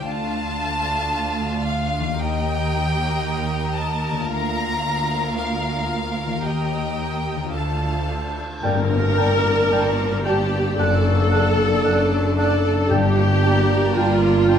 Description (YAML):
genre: cinematic, emotional film score for orchestra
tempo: 56 BPM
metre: 4/4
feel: rubato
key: G minor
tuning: A4 = 440 Hz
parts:
  - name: rich chamber violin section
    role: melody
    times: 0.0-14.6 s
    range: F5 to Bb5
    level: -28 LUFS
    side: left 2 dB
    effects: none
  - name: concert harp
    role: arpeggios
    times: 0.0-14.6 s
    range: F#2 to D6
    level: -28 LUFS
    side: left 8 dB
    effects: none
  - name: rich studio cello section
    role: bass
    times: 0.0-14.6 s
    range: D2 to G2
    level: -26 LUFS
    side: right 1 dB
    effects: none
  - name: warm studio double bass section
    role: bass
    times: 0.0-14.6 s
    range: F#1 to Eb2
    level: -26 LUFS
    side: right 3 dB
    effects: none
  - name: clear studio violin section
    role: second line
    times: 0.1-14.6 s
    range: F4 to F5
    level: -30 LUFS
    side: left 2 dB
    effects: none
  - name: rich studio viola section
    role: accompaniment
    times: 0.1-14.6 s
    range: A3 to Bb4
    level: -23 LUFS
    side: right 1 dB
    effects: none
  - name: cymbal swell and tam-tam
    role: percussion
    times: 4.3-12.9 s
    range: none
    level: -33 LUFS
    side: left 2 dB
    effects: none
  - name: mellow clarinet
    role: second line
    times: 8.6-14.6 s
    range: D5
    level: -31 LUFS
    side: equal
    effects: none
  - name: mellow large flute ensemble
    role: second line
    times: 8.6-14.6 s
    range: A5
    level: -32 LUFS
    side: equal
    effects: none
  - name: warm oboe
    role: second line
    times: 8.6-14.6 s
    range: F#5 to G5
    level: -30 LUFS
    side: right 3 dB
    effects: none
  - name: mellow French horn section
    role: sustained chords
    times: 8.6-14.6 s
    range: Bb3 to D4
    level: -27 LUFS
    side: left 4 dB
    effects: none
  - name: timpani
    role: percussion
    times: 12.9-14.5 s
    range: none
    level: barely audible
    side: none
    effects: none
room: moderate scoring stage reverb, RT60 1.7 s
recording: none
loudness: -18 LUFS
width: side -8 dB against mid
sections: 0.0-8.6 A section; 8.6-14.6 A section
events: band accent 8.6-9.7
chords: 0.1 Dm; 2.2 Eb; 4.3 Bb/D; 6.4 Eb; 7.5 Dm; 8.6 Gmadd9; 10.8 D/F#; 12.9 Gmadd9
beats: | 0.06 1.12 2.18 3.23 | 4.29 5.36 6.44 7.53 | 8.62 9.70 10.78 11.85 | 12.91 13.97